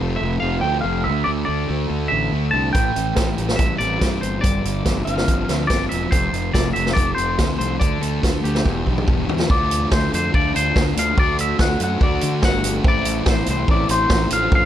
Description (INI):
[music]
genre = indie rock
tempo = 142 BPM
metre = 4/4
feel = straight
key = unclear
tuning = A4 = 439 Hz
[part]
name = twangy electric guitar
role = melody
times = 0.0-14.7 s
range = G4 to A5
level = -23 LUFS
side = left 1 dB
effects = phaser, tape echo
[part]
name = fuzz guitar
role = riff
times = 0.0-14.7 s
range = E2 to F#4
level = -24 LUFS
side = left 1 dB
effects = distortion
[part]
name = fuzz fingered electric bass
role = bass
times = 0.0-14.7 s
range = E1 to D3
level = -24 LUFS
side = equal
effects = overdrive
[part]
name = vintage drum kit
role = drums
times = 2.7-14.6 s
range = hi-hat, kick drum, snare drum, toms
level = -20 LUFS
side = equal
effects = none
[part]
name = percussive tonewheel organ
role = sustained chords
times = 12.8-14.7 s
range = A3 to F5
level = -31 LUFS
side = right 2 dB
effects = slow rotary speaker, chorus vibrato
[sound]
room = light reverb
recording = none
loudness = -17 LUFS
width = side -11 dB against mid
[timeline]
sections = 0.0-9.5 A section; 9.5-14.7 B section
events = drum fill 8.7-9.5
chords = 0.0 F; 1.1 Dsus2; 2.7 Am7; 4.2 G7sus4; 6.1 F; 7.8 D5; 8.7 Em7; 9.5 Dm7; 11.2 D; 12.8 Am